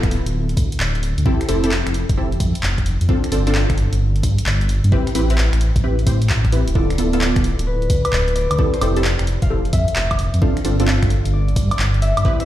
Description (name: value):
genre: UK garage, two-step garage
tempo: 131 BPM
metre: 4/4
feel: swing 66% on 16ths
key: unclear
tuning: A4 = 440 Hz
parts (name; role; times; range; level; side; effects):
- punchy chord stab; stabs; 0.0-12.4 s; B3 to C5; -23 LUFS; equal; chorus, ping-pong delay
- dark detuned saw bass; bass; 0.0-12.2 s; D1 to A2; -18 LUFS; equal; tube saturation
- electronic kick drum; drums; 0.0-12.4 s; none; -19 LUFS; equal; overdrive
- punchy analog drum machine; drums; 0.0-12.4 s; finger snaps, handclaps, hi-hat, woodblock; -25 LUFS; right 1 dB; overdrive
- concert harp; melody; 6.8-12.4 s; B4 to F5; -26 LUFS; left 2 dB; none
room: light reverb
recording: played on a big sound system in a bare room, large studio reverb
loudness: -16 LUFS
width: side -13 dB against mid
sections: 0.0-12.4 A section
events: none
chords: 0.0 Dm69; 1.3 Fmaj7; 3.1 G9sus4; 4.9 Am9; 6.8 Dm69; 8.6 Fmaj7; 10.4 G9sus4